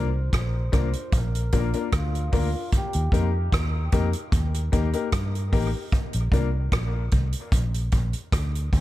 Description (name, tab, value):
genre	dub reggae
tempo	75 BPM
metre	4/4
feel	straight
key	Bb major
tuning	A4 = 440 Hz
part	melodica	melody	0.0-3.1 s	F4 to C5	-37 LUFS	equal	low-pass filter, dub echo
part	clear concert grand piano	stabs	0.0-6.5 s	Bb3 to Bb4	-31 LUFS	left 6 dB	dub echo
part	vintage muted fingered electric bass	bass	0.0-8.8 s	A1 to G2	-25 LUFS	equal	none
part	vintage drum kit	drums	0.3-8.8 s	hi-hat, kick drum, rim click	-24 LUFS	equal	none
room	small room ambience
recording	none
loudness	-22 LUFS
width	side -15 dB against mid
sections	0.0-8.8 A section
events	none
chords	0.0 Bb; 2.7 Eb; 5.9 Bb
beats	0.33 1.13 1.93 | 2.73 3.53 4.33 5.13 | 5.93 6.72 7.52 8.32